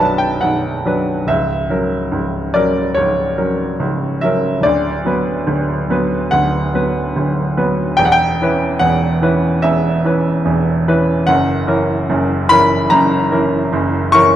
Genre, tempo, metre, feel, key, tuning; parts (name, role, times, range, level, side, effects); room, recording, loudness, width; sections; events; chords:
classical, romantic character piece for solo piano; 72 BPM; 4/4; rubato; B minor; A4 = 441 Hz
bright baby grand piano; solo; 0.0-14.4 s; B0 to C#6; -13 LUFS; equal
wet recital hall reverb, RT60 1.6 s; dark, warm production; -13 LUFS; side -11 dB against mid
0.0-14.4 A section
0.0 Bm; 1.3 F#7/C#; 4.7 Bm/D; 8.0 Em69; 11.3 F#7